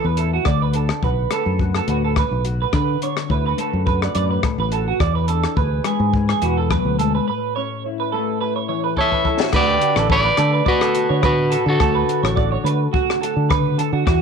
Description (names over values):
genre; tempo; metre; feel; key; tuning
highlife guitar band; 106 BPM; 4/4; swing 54% on 16ths; D major; A4 = 440 Hz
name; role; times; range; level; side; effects
mellow electric guitar; accompaniment; 0.0-14.2 s; A2 to B4; -25 LUFS; left 13 dB; analog chorus
electric guitar through a small old amp; arpeggios; 0.0-14.2 s; F#4 to D5; -22 LUFS; right 15 dB; analog chorus, slapback echo
fingered electric bass; bass; 0.0-14.2 s; A1 to D3; -21 LUFS; equal; none
compact cocktail drum kit; drums; 0.2-14.2 s; crash cymbal, hi-hat, kick drum, rim click, snare drum; -23 LUFS; left 3 dB; none
electric guitar at the edge of break-up; melody; 9.0-13.3 s; F#4 to E5; -19 LUFS; left 1 dB; none
room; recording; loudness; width
light reverb, studio ambience; 1960s-style stereo with parts hard left and right; -16 LUFS; side -6 dB against mid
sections
0.0-9.5 A section; 9.5-14.2 B section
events
break 7.3-9.5; drum fill 9.0-9.5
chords
0.5 D6; 5.0 E7; 7.3 A; 9.5 D6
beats
| 0.46 1.03 1.60 2.16 | 2.73 3.30 3.87 4.44 | 5.00 5.57 6.14 6.71 | 7.27 7.84 8.41 8.97 | 9.54 10.11 10.67 11.24 | 11.80 12.37 12.93 13.49 | 14.06